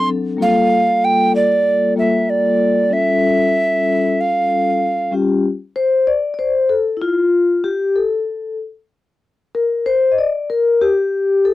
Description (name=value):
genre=hip hop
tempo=95 BPM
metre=4/4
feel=swing 62% on 16ths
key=unclear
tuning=A4 = 440 Hz
part: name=mellow hollow tenor recorder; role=melody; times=0.0-5.1 s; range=D5 to G5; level=-15 LUFS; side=right 2 dB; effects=none
part: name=vibraphone with soft mallets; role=accompaniment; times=0.0-11.5 s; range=F#3 to Eb5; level=-16 LUFS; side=left 3 dB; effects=none
room=moderate booth ambience, RT60 0.2 s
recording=dry, close 1970s-style studio recording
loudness=-14 LUFS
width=side -15 dB against mid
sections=0.0-5.4 A section; 5.4-11.5 B section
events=vibraphone solo 5.4-11.5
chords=0.4 Gm9; 2.9 A7b13; 5.4 N.C.